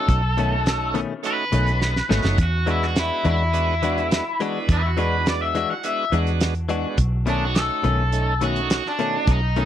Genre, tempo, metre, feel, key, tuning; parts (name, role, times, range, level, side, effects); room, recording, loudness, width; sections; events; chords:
straight-eighth soul blues; 104 BPM; 4/4; straight; B mixolydian; A4 = 439 Hz
overdriven electric guitar; melody; 0.0-9.7 s; D4 to F#5; -24 LUFS; left 1 dB
bright tonewheel organ; accompaniment; 0.0-9.7 s; G#3 to A4; -29 LUFS; right 8 dB; overdrive, slow rotary speaker
vintage muted fingered electric bass; bass; 0.1-9.7 s; F#1 to E2; -22 LUFS; equal
warm soul drum kit; drums; 0.1-9.7 s; hi-hat, kick drum, snare drum; -23 LUFS; right 1 dB
direct-recorded clean electric guitar; stabs; 0.4-9.7 s; B2 to F#4; -28 LUFS; left 7 dB; spring reverb
little or no reverb; dry, close 1970s-style studio recording; -19 LUFS; side -10 dB against mid
0.0-9.7 A section
overdriven electric guitar solo 0.0-9.7; drum fill 1.8-2.4
0.0 B9; 2.4 E9; 7.0 B9